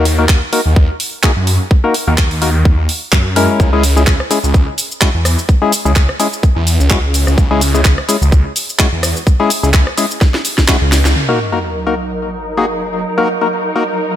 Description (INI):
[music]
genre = bass house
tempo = 127 BPM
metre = 4/4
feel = swing 55% on 16ths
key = Eb phrygian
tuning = A4 = 441 Hz
[part]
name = percussive organ stab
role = stabs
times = 0.0-13.8 s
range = Ab3 to Bb4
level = -17 LUFS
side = left 3 dB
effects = chorus, sidechain pumping, tape echo
[part]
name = phased detuned saw bass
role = bass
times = 0.0-11.1 s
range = Db2 to Gb2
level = -14 LUFS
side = equal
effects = phaser, tube saturation, sidechain pumping
[part]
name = garage drum kit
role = drums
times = 0.1-11.1 s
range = cabasa, handclaps, hi-hat, rim click, snare drum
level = -17 LUFS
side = right 1 dB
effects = studio ambience
[part]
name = electronic kick drum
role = drums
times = 0.3-10.8 s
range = none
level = -11 LUFS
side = equal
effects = studio ambience
[part]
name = muted studio string section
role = sustained chords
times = 11.2-14.2 s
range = Gb3 to Bb4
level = -19 LUFS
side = equal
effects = sidechain pumping, low-pass filter
[part]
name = sub drop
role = sound effects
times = 11.2-13.0 s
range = none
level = -24 LUFS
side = right 1 dB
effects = none
[sound]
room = light reverb, digital ambience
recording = none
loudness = -11 LUFS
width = side -11 dB against mid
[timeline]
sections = 0.0-11.2 A section; 11.2-14.2 B section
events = drum fill 10.2-11.2; band accent 11.0; impact 11.2-13.0; filter sweep on string section 11.2-14.2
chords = 0.0 Ebm; 3.6 Dbm; 11.2 Ebm